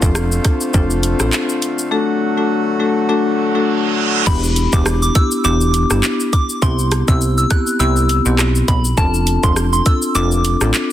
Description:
dancehall; 102 BPM; 4/4; swing 56% on 16ths; E minor; A4 = 440 Hz
marimba with medium mallets; accompaniment; 0.0-10.8 s; A3 to A4; -18 LUFS; left 2 dB; sidechain pumping
accordion; sustained chords; 0.0-4.2 s; D3 to F#4; -23 LUFS; right 2 dB; sidechain pumping
plucky analog bass; bass; 0.0-10.7 s; E1 to C2; -17 LUFS; equal
island pop drum kit; drums; 0.0-10.9 s; crash cymbal, handclaps, hi-hat, kick drum, rim click, shaker; -17 LUFS; equal; soft clipping on snare
reverse cymbal; sound effects; 3.4-4.3 s; -21 LUFS; right 7 dB
soft synth bell; melody; 4.3-10.6 s; A5 to F#6; -21 LUFS; equal; chorus, phaser, digital delay
little or no reverb; dense, heavily limited modern master; -13 LUFS; side -12 dB against mid
0.0-4.3 A section; 4.3-10.9 B section
reverse cymbal 3.4-4.3
0.0 F6; 1.9 D; 4.3 Em7; 6.6 Cmaj7; 9.0 F6

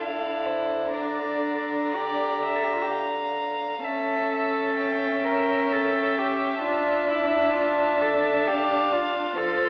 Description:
classical, slow romantic movement for string quartet; 65 BPM; 3/4; rubato; D minor; A4 = 440 Hz
rich violin; melody; 0.0-9.7 s; F5 to Bb5; -34 LUFS; equal
rich violin; second line; 0.0-9.7 s; C5 to F5; -32 LUFS; equal
dark viola; accompaniment; 0.0-9.7 s; D3 to D4; -30 LUFS; equal
rich cello; bass; 0.0-9.7 s; D4 to Bb4; -29 LUFS; equal
wet recital hall reverb, RT60 1.4 s; heard from further back in the room, AM radio sound; -25 LUFS; mono
0.0-9.7 A section
0.0 Dm; 0.9 Gm/D; 3.8 A7/C#; 6.6 Dm

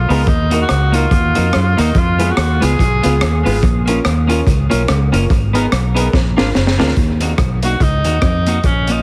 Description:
ska; 144 BPM; 4/4; swing 59% on 8ths; Eb minor; A4 = 440 Hz
breathy tenor saxophone; melody; 0.0-3.5, 7.6-9.0 s; Db4 to Ab4; -23 LUFS; equal; dub echo
fingered electric bass; bass; 0.0-9.0 s; Gb1 to Gb2; -18 LUFS; equal
clean electric guitar; accompaniment; 0.1-9.0 s; Ab3 to Bb4; -24 LUFS; equal; spring reverb
bright upright piano; stabs; 0.1-6.9 s; Cb4 to Bb4; -25 LUFS; equal; dub echo
crunchy breakbeat drum kit; drums; 0.1-9.0 s; hi-hat, kick drum, rim click, snare drum; -20 LUFS; equal; dub echo
little or no reverb; heavily compressed radio sound, multiband compression; -14 LUFS; mono
0.0-7.0 A section; 7.0-9.0 B section
drum fill 6.1-7.0
0.3 Ebm; 2.0 Fdim; 3.6 Bbm; 5.3 Abmadd9; 6.1 Bb; 7.0 Ebm

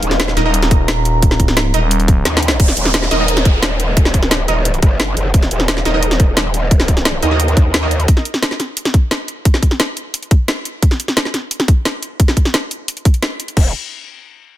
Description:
dark technical drum and bass; 175 BPM; 4/4; straight; A4 = 438 Hz
deep dark ambient pad; sustained chords; 0.0-2.6 s; Eb4 to Bb5; -24 LUFS; right 3 dB; chorus, built-in reverb, sidechain pumping
orchestra-hit-like synth stab; stabs; 0.0-7.9 s; Eb4 to Eb5; -22 LUFS; right 3 dB; built-in reverb, vintage 12-bit sampler grit, dub echo
growl bass; bass; 0.0-8.1, 13.6-13.7 s; Eb1 to Eb2; -17 LUFS; equal; chorus, overdrive, sidechain pumping
drum and bass drum kit; drums; 0.0-13.6 s; crash cymbal, hi-hat, snare drum; -18 LUFS; equal; overdrive
growling FM bass; bass; 0.4-2.2 s; Eb1; -15 LUFS; equal
electronic kick drum; drums; 0.7-13.6 s; -11 LUFS; equal; overdrive
downlifter; sound effects; 2.6-5.3 s; -23 LUFS; right 1 dB
digital ambience; dense, heavily limited modern master; -12 LUFS; side -13 dB against mid
0.0-2.6 A section; 2.6-13.6 B section; 13.6-14.6 C section
drop 0.0-2.6; drum fill 2.3-2.6
0.0 Eb5; 13.6 N.C.

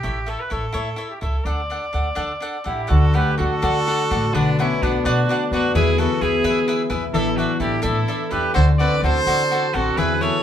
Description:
mexican folk, mariachi; 84 BPM (dotted quarters); 6/8; rubato; D major; A4 = 442 Hz
bright trumpet; melody; 0.0-10.4 s; D4 to D5; -24 LUFS; right 1 dB
cavaquinho; accompaniment; 0.0-10.4 s; D4 to F#5; -26 LUFS; equal
upright bass; bass; 0.0-10.3 s; A1 to E3; -23 LUFS; right 1 dB
bright trumpet; second line; 2.7-10.4 s; B3 to B4; -27 LUFS; right 4 dB
concert harp; arpeggios; 2.9-10.4 s; D3 to E5; -22 LUFS; left 3 dB
wet large studio reverb, RT60 0.9 s; band playing live in one room; -18 LUFS; side -9 dB against mid
0.0-2.9 A section; 2.9-10.4 A section
0.0 A; 1.5 D; 4.3 Bm; 5.7 E; 7.1 Asus4; 8.6 D7

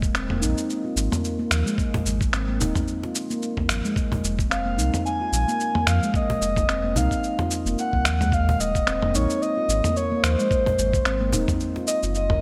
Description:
organic downtempo; 110 BPM; 4/4; swing 57% on 16ths; A4 = 441 Hz
handpan; arpeggios; 0.0-12.4 s; F3 to Bb4; -30 LUFS; equal; digital delay
warm sub bass; bass; 0.0-12.4 s; Eb1 to F2; -27 LUFS; equal; tube saturation
dusty soul sampler-style drum kit; drums; 0.0-12.4 s; cabasa, finger snaps, toms; -29 LUFS; equal
electronic kick drum; drums; 0.0-12.4 s; -29 LUFS; equal
cajon; percussion; 1.9-11.9 s; -32 LUFS; equal
breathy flute-like synth lead; melody; 4.5-12.4 s; C5 to Ab5; -28 LUFS; equal; chorus, digital delay
moderate lush hall reverb, RT60 2.4 s; bright 1980s-style digital production; -23 LUFS; mono
0.0-12.4 A section
0.0 Eb5; 4.0 F5; 8.3 Eb5; 10.5 Ab7

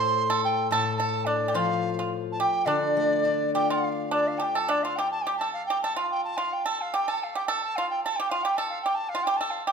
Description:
chinese traditional, Chinese chamber ensemble; 108 BPM; 4/4; rubato; D yu mode; A4 = 442 Hz
mellow large dizi; melody; 0.0-9.7 s; D5 to C6; -27 LUFS; right 2 dB
pipa; second line; 0.0-9.7 s; D4 to C5; -28 LUFS; right 2 dB
steel-string zither; accompaniment; 0.0-4.7 s; A2 to F4; -29 LUFS; left 6 dB
wet recital hall reverb, RT60 1.7 s; minimal, uncompressed stereo recording; -24 LUFS; side -6 dB against mid
0.0-4.1 A section; 4.1-9.7 B section

